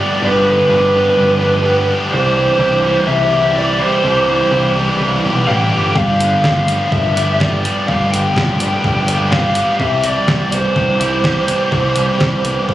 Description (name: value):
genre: indie rock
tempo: 125 BPM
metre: 4/4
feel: straight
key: C major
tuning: A4 = 439 Hz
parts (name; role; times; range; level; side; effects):
- lead guitar through a small cranked amp; melody; 0.0-12.7 s; B4 to G5; -16 LUFS; equal; overdrive, tape echo
- overdriven electric guitar; riff; 0.0-12.7 s; G2 to G4; -19 LUFS; left 2 dB; none
- overdriven semi-hollow guitar; riff; 0.0-12.7 s; G2 to G4; -19 LUFS; right 3 dB; analog chorus
- growling picked electric bass; bass; 0.2-12.7 s; G1 to C2; -19 LUFS; equal; overdrive
- detuned 8-bit digital drum machine; drums; 6.0-12.7 s; hi-hat, kick drum, snare drum; -18 LUFS; equal; none
room: moderate studio ambience, RT60 0.5 s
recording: recorded on a phone in the room, club reverb, compression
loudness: -12 LUFS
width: side -14 dB against mid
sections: 0.0-12.7 A section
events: none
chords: 0.0 G7; 2.1 Cmaj7; 6.0 G7; 9.8 Cmaj7